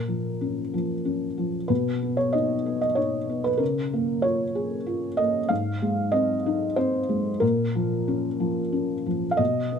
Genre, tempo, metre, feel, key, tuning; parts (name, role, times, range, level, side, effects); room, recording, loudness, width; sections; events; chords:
neoclassical minimalist piano; 94 BPM; 3/4; rubato; A4 = 440 Hz
felt-muted upright piano; solo; 0.0-9.8 s; Ab2 to F5; -23 LUFS; equal
light reverb; -23 LUFS; side -7 dB against mid
0.0-9.8 A section
0.0 Bbm; 1.7 B; 3.6 Db6; 5.5 Ab; 7.4 Bbm